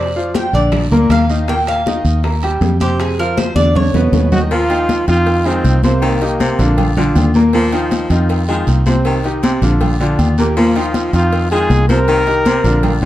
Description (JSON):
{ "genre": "latin, salsa", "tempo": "158 BPM", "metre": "4/4", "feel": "straight", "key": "Eb major", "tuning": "A4 = 438 Hz", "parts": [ { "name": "Cuban tres", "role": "melody", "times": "0.0-4.4 s", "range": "G4 to G5", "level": "-19 LUFS", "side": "right 1 dB", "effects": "none" }, { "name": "bright upright piano", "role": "accompaniment", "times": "0.0-13.1 s", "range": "Bb2 to Bb5", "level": "-18 LUFS", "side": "equal", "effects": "none" }, { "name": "fingered electric bass", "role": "bass", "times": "0.0-13.1 s", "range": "Bb1 to F2", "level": "-16 LUFS", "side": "equal", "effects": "none" }, { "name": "bongos and cowbell", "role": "percussion", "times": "0.2-13.0 s", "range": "none", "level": "-27 LUFS", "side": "left 5 dB", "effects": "none" }, { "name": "congas", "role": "percussion", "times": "0.2-13.1 s", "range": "none", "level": "-21 LUFS", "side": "left 1 dB", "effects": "none" }, { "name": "guiro", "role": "percussion", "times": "0.3-13.1 s", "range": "none", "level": "-34 LUFS", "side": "right 5 dB", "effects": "none" }, { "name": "timbales and agogo bells", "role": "percussion", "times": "0.3-13.1 s", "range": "none", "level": "-26 LUFS", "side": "right 1 dB", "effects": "none" }, { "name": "brilliant trombone", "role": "melody", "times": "4.3-6.9, 10.4-13.0 s", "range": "Bb3 to Bb4", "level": "-17 LUFS", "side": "equal", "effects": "none" }, { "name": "clear baritone saxophone", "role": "second line", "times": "4.5-13.1 s", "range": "Bb2 to Ab3", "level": "-22 LUFS", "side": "left 2 dB", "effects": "none" } ], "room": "light reverb", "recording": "dark, warm production", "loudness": "-12 LUFS", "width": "side -14 dB against mid", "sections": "0.0-4.5 A section; 4.5-13.1 B section", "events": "Cuban tres solo 0.0-4.5; drum fill 3.4-4.5", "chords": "0.0 F5; 0.7 Bb; 1.5 Eb69; 3.0 F5; 3.8 E5; 4.5 Ebsus2; 5.3 Fm7; 6.0 Cm7; 6.8 Bb; 7.5 Ebsus2; 8.3 Fm7; 9.1 Cm7; 9.8 Bb; 10.6 Ebsus2; 11.3 Fm7; 12.1 Cm7" }